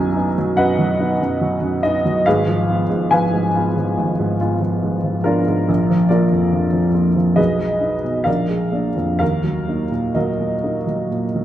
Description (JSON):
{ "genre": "classical, romantic character piece for solo piano", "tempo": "61-73 BPM", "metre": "4/4", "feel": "rubato", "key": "Eb minor", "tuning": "A4 = 440 Hz", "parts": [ { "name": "warm upright piano", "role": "solo", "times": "0.0-11.4 s", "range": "Ab1 to Bb5", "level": "-16 LUFS", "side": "equal", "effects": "none" } ], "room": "wet recital hall reverb, RT60 1.5 s", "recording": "none", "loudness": "-16 LUFS", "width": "side -12 dB against mid", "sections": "0.0-11.4 A section", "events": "none", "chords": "0.0 B; 2.3 Fdim/Ab; 5.7 Bb; 7.4 Abm/Cb; 8.3 Bb7; 9.2 Ebm" }